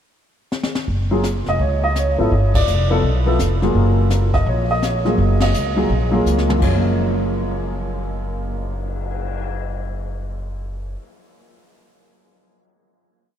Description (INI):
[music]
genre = jazz piano trio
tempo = 167 BPM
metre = 4/4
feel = swing 64% on 8ths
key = F# major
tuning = A4 = 443 Hz
[part]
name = jazz brush drum kit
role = drums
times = 0.5-9.4 s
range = brushed snare drum, crash cymbal, cymbal swell, hi-hat, kick drum, ride cymbal, snare drum, toms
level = -26 LUFS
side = left 1 dB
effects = none
[part]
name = upright bass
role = bass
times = 0.9-10.9 s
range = E#1 to C#2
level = -20 LUFS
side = equal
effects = none
[part]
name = warm baby grand piano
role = melody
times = 1.1-11.0 s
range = F#2 to D#5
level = -20 LUFS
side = equal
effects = lush chorus, analog delay
[sound]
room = moderate huge ambient reverb, RT60 7.4 s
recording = dreamy mix soaked in reverb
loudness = -17 LUFS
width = side -9 dB against mid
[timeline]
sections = 0.0-0.9 pickup bar; 0.9-6.6 A section; 6.6-9.5 final chord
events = drum fill 0.5-0.9, 6.3-6.6; band accent 2.5, 5.4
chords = 0.0 N.C.; 0.9 F#5; 2.3 G7; 3.7 F#maj9